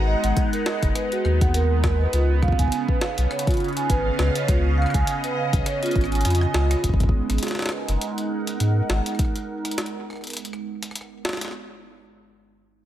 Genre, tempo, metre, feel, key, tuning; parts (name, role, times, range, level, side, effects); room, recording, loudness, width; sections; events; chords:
IDM; 102 BPM; 4/4; swing 56% on 16ths; G# minor; A4 = 444 Hz
phased analog pad; sustained chords; 0.0-11.5 s; C#3 to A#5; -28 LUFS; right 2 dB; phaser, chorus
warm sub bass; bass; 0.0-9.0 s; F#1 to G#2; -21 LUFS; equal; tube saturation
vibraphone with soft mallets; arpeggios; 0.1-6.8 s; E#4 to G#5; -26 LUFS; right 3 dB; analog delay
jungle sampler-style drum kit; drums; 0.2-11.5 s; hi-hat, rim click, snare drum; -30 LUFS; equal; analog delay
electronic kick drum; drums; 0.4-9.3 s; -23 LUFS; equal
light reverb, digital ambience; echo-heavy mix, faint mains hum; -20 LUFS; side -12 dB against mid
0.0-6.8 A section; 6.8-11.5 B section
drum fill 6.2-6.8; filter sweep on analog synth pad 6.8-11.5
0.0 G#m9; 2.1 C#7; 6.8 G#m9